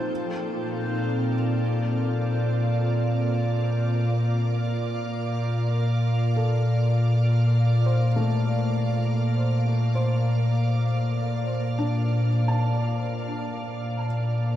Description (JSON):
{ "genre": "ambient", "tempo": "free time", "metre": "none", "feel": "none", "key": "Bb major", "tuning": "A4 = 440 Hz", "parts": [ { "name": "soft additive organ-like pad", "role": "sustained chords", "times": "0.0-14.6 s", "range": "Bb2 to G5", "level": "-22 LUFS", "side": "equal", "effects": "ensemble chorus, built-in reverb" }, { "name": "felt-muted upright piano", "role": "arpeggios", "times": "0.0-14.6 s", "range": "A3 to A5", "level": "-34 LUFS", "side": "equal", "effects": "diffuse ambient delay" }, { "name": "bowed-like drone", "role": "drone", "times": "0.0-14.6 s", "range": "Bb2 to F4", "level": "-36 LUFS", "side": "equal", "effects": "built-in reverb" } ], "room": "wet cathedral reverb, RT60 6.1 s", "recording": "in a vast, echoing space", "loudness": "-22 LUFS", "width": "side -12 dB against mid", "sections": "0.0-14.6 A section", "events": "none", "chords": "0.1 Bb" }